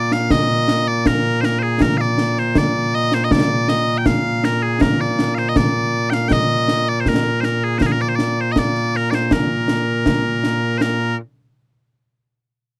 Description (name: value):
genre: scottish traditional, Scottish pipe music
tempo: 80 BPM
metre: 2/4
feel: straight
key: Bb mixolydian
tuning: A4 = 440 Hz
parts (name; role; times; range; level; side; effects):
- loud bright bagpipes; melody; 0.0-11.2 s; Bb2 to G5; -20 LUFS; equal; none
- concert snare drum and concert bass drum; drums; 0.1-11.2 s; none; -22 LUFS; equal; none
room: light reverb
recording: dry, close 1970s-style studio recording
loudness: -18 LUFS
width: mono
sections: 0.0-10.8 A section; 10.8-12.3 B section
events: none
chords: none